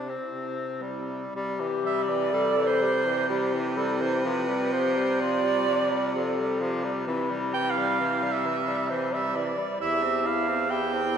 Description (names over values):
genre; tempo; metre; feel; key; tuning
classical, lyrical piece for single-reed quartet; 54-67 BPM; 3/4; rubato; C major; A4 = 439 Hz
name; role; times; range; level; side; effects
dark clarinet; melody; 0.0-11.2 s; E4 to C5; -31 LUFS; left 6 dB; none
warm alto saxophone; second line; 0.0-11.2 s; E4 to G5; -27 LUFS; right 4 dB; none
clear tenor saxophone; accompaniment; 0.0-11.2 s; E3 to E4; -31 LUFS; left 2 dB; none
warm baritone saxophone; bass; 0.0-11.2 s; E2 to C3; -31 LUFS; right 1 dB; none
room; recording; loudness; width
wet church reverb, RT60 2.9 s; recorded in a church or concert hall; -24 LUFS; side -8 dB against mid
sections
0.0-1.3 A section; 1.3-11.2 B section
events
none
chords
0.0 C; 4.2 G5/C; 7.1 C; 9.8 C/E